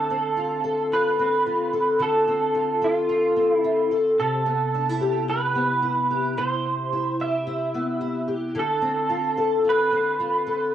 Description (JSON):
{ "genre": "indie pop", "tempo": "110 BPM", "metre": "4/4", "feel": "swing 55% on 16ths", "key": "unclear", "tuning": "A4 = 440 Hz", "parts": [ { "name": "electric guitar through a small old amp", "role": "melody", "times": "0.0-10.7 s", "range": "F4 to E5", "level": "-24 LUFS", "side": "right 4 dB", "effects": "ensemble chorus, cassette tape, plate reverb, tape echo" }, { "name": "picked steel-string acoustic guitar", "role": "accompaniment", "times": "0.0-10.7 s", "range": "C3 to A4", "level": "-23 LUFS", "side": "left 2 dB", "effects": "ensemble chorus, warbly pitch drift, cassette tape" } ], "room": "moderate small room reverb, RT60 0.5 s", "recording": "home recording on cassette", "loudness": "-20 LUFS", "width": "side -10 dB against mid", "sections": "0.0-10.7 A section", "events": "none", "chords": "0.0 Dm7; 4.2 Cmaj7; 8.6 Dm7", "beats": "0.37 0.91 1.46 | 2.01 2.55 3.10 3.65 | 4.19 4.74 5.28 5.83 | 6.37 6.92 7.46 8.01 | 8.56 9.10 9.65 10.19 | 10.74" }